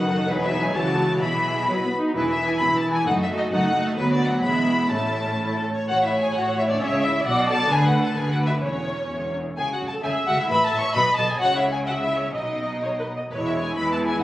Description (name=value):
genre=quick classical-period movement for string orchestra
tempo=130 BPM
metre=2/4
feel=rubato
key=E major, A major from 4.0 s, E major from 9.6 s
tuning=A4 = 440 Hz
part: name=warm symphonic violin section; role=melody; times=0.0-14.2 s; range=B4 to C#6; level=-24 LUFS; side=left 1 dB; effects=none
part: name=clear symphonic violin section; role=second line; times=0.0-14.2 s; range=C#4 to E5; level=-30 LUFS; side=left 1 dB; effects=none
part: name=rich symphonic viola section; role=accompaniment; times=0.0-14.2 s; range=D#3 to E5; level=-25 LUFS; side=right 1 dB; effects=none
part: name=clear symphonic cello section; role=bass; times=0.0-14.2 s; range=D2 to E3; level=-28 LUFS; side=equal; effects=none
part: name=rich symphonic double bass section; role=bass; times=0.0-14.2 s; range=E1 to E2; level=-31 LUFS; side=right 1 dB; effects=none
room=wet recital hall reverb, RT60 1.5 s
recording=recorded on a phone in the room, club reverb, compression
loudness=-20 LUFS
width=side -15 dB against mid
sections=0.0-5.9 A section; 5.9-13.3 B section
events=none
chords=0.3 E; 0.7 A/C#; 1.2 E/B; 1.7 B; 2.2 E; 3.1 D#dim/F#; 4.0 Bm/D; 4.4 E; 4.9 A; 6.8 C#m; 7.3 Bm; 7.7 Bm/D; 8.6 C#m/E; 9.6 C#m; 10.5 Aadd9; 10.9 B; 11.4 C#m; 12.3 B; 13.3 E